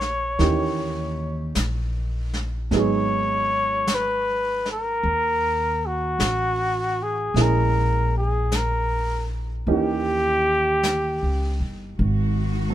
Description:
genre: jazz ballad.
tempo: 52 BPM.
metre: 4/4.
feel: swing 67% on 8ths.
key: G# minor.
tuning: A4 = 439 Hz.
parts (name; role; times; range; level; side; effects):
clear flugelhorn; melody; 0.0-11.6 s; F#4 to C#5; -23 LUFS; left 1 dB; none.
warm upright piano; accompaniment; 0.0-12.7 s; E3 to G#4; -26 LUFS; right 5 dB; none.
upright bass; bass; 0.0-12.7 s; G1 to D#2; -25 LUFS; equal; none.
vintage brush drum kit; drums; 0.0-12.7 s; brushed snare drum, hi-hat, snare drum; -31 LUFS; left 1 dB; none.
rich symphonic cello section; sustained chords; 12.0-12.7 s; D#3 to F#4; -28 LUFS; left 2 dB; none.
room: little or no reverb.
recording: minimal, uncompressed stereo recording.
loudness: -20 LUFS.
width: side -12 dB against mid.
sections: 0.0-12.0 A section.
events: none.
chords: 0.4 D#7b9; 2.7 G#m9; 7.4 A#m7b5; 9.7 D#7b9; 12.0 G#7(no3).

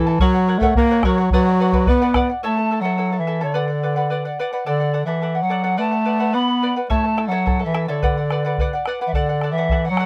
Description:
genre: andean folk, Andean ensemble.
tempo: 107 BPM.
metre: 2/4.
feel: straight.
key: B minor.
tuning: A4 = 440 Hz.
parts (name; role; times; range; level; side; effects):
warm bass clarinet; melody; 0.0-10.1 s; D3 to B3; -22 LUFS; equal; none.
bright polished pan flute; second line; 0.0-10.1 s; E4 to B5; -26 LUFS; equal; none.
charango; accompaniment; 0.0-10.1 s; E4 to A5; -26 LUFS; equal; none.
bombo; percussion; 0.2-2.3, 6.9-10.1 s; none; -24 LUFS; equal; none.
room: light reverb.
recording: none.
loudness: -19 LUFS.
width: mono.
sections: 0.0-2.4 A section; 2.4-10.1 B section.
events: none.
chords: 0.2 F#; 1.3 Bm; 2.4 A; 3.5 Bm; 4.7 D; 5.8 Bm; 6.9 A; 8.0 Bm; 9.1 D.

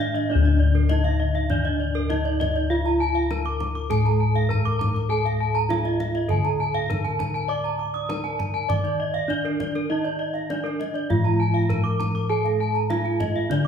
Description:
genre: Balinese gamelan.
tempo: 100 BPM.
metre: 4/4.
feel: straight.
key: D pelog.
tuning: A4 = 440 Hz.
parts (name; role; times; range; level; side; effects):
gamelan-type bronze metallophone; melody; 0.0-13.7 s; D4 to D5; -27 LUFS; right 4 dB; none.
gamelan-type bronze metallophone; accompaniment; 0.0-0.3, 9.9-13.7 s; D3 to A3-45c; -33 LUFS; equal; none.
gamelan-type bronze metallophone; arpeggios; 0.0-13.7 s; Bb4-40c to D6; -29 LUFS; left 3 dB; none.
gamelan-type bossed gongs; bass; 0.0-13.7 s; D2 to D5; -24 LUFS; left 2 dB; none.
kendang; percussion; 0.0-13.6 s; none; -31 LUFS; equal; none.
gamelan-type bronze metallophone; arpeggios; 0.4-13.7 s; Bb4-40c to Eb6; -31 LUFS; right 4 dB; none.
room: wet large studio reverb, RT60 1.3 s.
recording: band playing live in one room.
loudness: -21 LUFS.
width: side -7 dB against mid.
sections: 0.3-13.7 A section.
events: none.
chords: none.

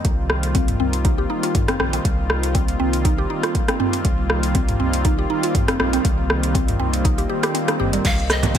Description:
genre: afro house.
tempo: 120 BPM.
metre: 4/4.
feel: swing 54% on 16ths.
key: C minor.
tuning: A4 = 439 Hz.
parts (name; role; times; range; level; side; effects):
warm analog pad; sustained chords; 0.0-8.6 s; Eb3 to F4; -25 LUFS; left 1 dB; chorus, tremolo, sidechain pumping.
warm sub bass; bass; 0.0-8.6 s; G1 to C2; -24 LUFS; equal; sidechain pumping.
afro-pop drum kit; drums; 0.0-8.6 s; crash cymbal, hi-hat, rim click, toms; -24 LUFS; equal; overdrive, small room ambience.
electronic kick drum; drums; 0.0-8.6 s; none; -20 LUFS; equal; overdrive, small room ambience.
mallet-like synth pluck; arpeggios; 0.5-8.6 s; G3 to G4; -25 LUFS; right 1 dB; chorus, phaser, sidechain pumping, ping-pong delay.
congas; percussion; 8.0-8.6 s; none; -23 LUFS; right 3 dB; none.
breathy pan flute; melody; 8.1-8.6 s; Eb5 to F5; -23 LUFS; equal; ping-pong delay.
maracas; percussion; 8.1-8.6 s; none; -33 LUFS; right 7 dB; none.
room: light reverb, digital ambience.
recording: none.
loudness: -17 LUFS.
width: side -9 dB against mid.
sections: 0.0-8.6 A section.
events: kick drops out 7.5-8.0.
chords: 0.0 Cm7.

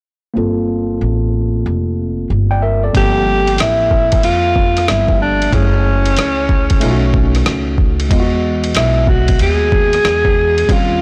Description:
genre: hip hop, jazz-hop.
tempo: 93 BPM.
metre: 4/4.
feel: swing 65% on 16ths.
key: unclear.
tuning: A4 = 438 Hz.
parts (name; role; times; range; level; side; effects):
tine electric piano; accompaniment; 0.3-11.0 s; F3 to G5; -22 LUFS; equal; low-pass filter.
upright bass; bass; 0.4-11.0 s; F1 to F2; -19 LUFS; equal; tube saturation.
lo-fi sampler-style drum kit; drums; 2.9-10.9 s; hi-hat, kick drum, ride cymbal, rim click; -19 LUFS; equal; overdrive.
breathy alto saxophone; melody; 3.0-11.0 s; C#4 to G#4; -18 LUFS; equal; tape echo.
room: light reverb.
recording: blown-out, overdriven recording, overdrive.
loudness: -14 LUFS.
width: mono.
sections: 0.4-2.9 A section; 2.9-11.0 B section.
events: filter sweep on tine electric piano 0.4-2.9.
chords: 0.4 Gm11; 5.5 F#m7; 6.8 B9; 8.1 Emaj9.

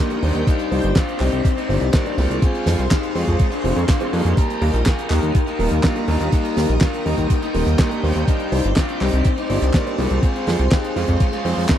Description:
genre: italo disco.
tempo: 123 BPM.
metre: 4/4.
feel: straight.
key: C minor.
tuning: A4 = 439 Hz.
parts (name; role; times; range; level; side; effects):
lead guitar through a small cranked amp; melody; 0.0-11.8 s; F3 to Bb4; -24 LUFS; left 3 dB; overdrive, tape echo.
string machine, full ensemble; sustained chords; 0.0-11.8 s; Ab4 to Eb6; -28 LUFS; left 1 dB; ensemble chorus, vintage 12-bit sampler grit.
dark baby grand piano; stabs; 0.0-11.6 s; G3 to C5; -25 LUFS; right 2 dB; none.
damped 70s drum kit; drums; 0.1-11.8 s; handclaps, hi-hat, snare drum; -23 LUFS; right 1 dB; studio reverb.
chorused synth bass; bass; 0.2-11.7 s; Eb1 to F2; -20 LUFS; equal; none.
electronic kick drum; drums; 0.5-11.8 s; none; -18 LUFS; equal; studio reverb.
room: studio ambience.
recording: dry, close 1970s-style studio recording.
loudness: -16 LUFS.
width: side -10 dB against mid.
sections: 0.0-11.8 A section.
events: none.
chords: 0.5 Cmadd9; 2.4 Fm; 4.4 Eb; 8.3 Cmadd9; 10.2 Fm.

